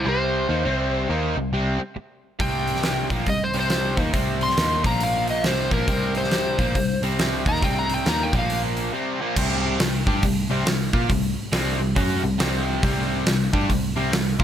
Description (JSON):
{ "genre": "blues rock power trio and southern rock", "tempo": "138 BPM", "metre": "4/4", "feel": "swing 62% on 8ths", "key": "unclear", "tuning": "A4 = 442 Hz", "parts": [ { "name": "overdriven slide guitar", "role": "melody", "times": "0.0-8.6 s", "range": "Bb4 to C6", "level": "-26 LUFS", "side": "left 1 dB", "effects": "digital delay" }, { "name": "vintage muted picked electric bass", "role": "bass", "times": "0.0-14.4 s", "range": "Bb1 to Bb2", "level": "-26 LUFS", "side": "equal", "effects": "none" }, { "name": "crunchy overdriven guitar", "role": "riff", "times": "0.1-14.4 s", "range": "Bb2 to Bb4", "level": "-25 LUFS", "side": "equal", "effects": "none" }, { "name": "huge arena drum kit", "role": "drums", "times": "2.4-14.4 s", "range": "crash cymbal, hi-hat, kick drum, snare drum", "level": "-24 LUFS", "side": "equal", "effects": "none" } ], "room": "light reverb", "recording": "none", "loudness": "-20 LUFS", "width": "side -10 dB against mid", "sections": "0.0-9.4 A section; 9.4-14.4 B section", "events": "none", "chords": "0.0 C5; 4.8 Bb5; 5.5 C5; 8.3 Bb5; 8.9 C5" }